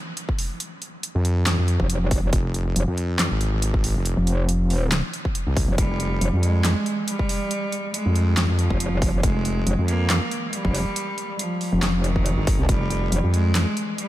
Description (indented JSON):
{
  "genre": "heavy wobble dubstep",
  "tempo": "139 BPM",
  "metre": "4/4",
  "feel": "swing 54% on 16ths, half-time",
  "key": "F minor",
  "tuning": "A4 = 444 Hz",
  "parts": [
    { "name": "big-room dance drum kit", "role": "drums", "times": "0.2-14.1 s", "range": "handclaps, hi-hat, snare drum", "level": "-28 LUFS", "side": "equal", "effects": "overdrive" },
    { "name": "electronic kick drum", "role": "drums", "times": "0.3-12.8 s", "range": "none", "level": "-24 LUFS", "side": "equal", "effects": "overdrive" },
    { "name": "wobble bass", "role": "bass", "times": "1.1-13.6 s", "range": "F1 to F2", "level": "-21 LUFS", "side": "equal", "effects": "chorus, overdrive" },
    { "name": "metallic wobble bass", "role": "bass", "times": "1.8-13.2 s", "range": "F1 to C2", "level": "-21 LUFS", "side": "equal", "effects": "chorus, overdrive" },
    { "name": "clear cello", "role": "melody", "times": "5.8-14.1 s", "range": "Eb3 to Bb3", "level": "-26 LUFS", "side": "right 1 dB", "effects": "ping-pong delay" }
  ],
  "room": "light reverb",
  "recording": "none",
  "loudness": "-20 LUFS",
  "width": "side -14 dB against mid",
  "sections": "0.0-14.1 A section",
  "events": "none",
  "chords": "none"
}